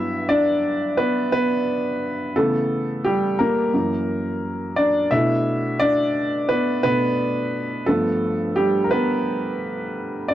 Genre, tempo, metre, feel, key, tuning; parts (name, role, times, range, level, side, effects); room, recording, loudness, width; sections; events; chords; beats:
R&B; 87 BPM; 4/4; swing 59% on 16ths; G major; A4 = 441 Hz
warm upright piano; solo; 0.0-10.3 s; F#2 to E5; -19 LUFS; equal
light reverb; dry, close 1970s-style studio recording; -19 LUFS; side -12 dB against mid
0.0-10.3 A section
upright piano solo 0.0-10.3
0.0 Gmaj7; 2.3 C#m7b5; 3.7 F#aug7; 5.1 Bm7; 7.9 G9
0.28 0.97 1.66 | 2.35 3.04 3.72 4.41 | 5.10 5.79 6.48 7.17 | 7.86 8.55 9.24 9.93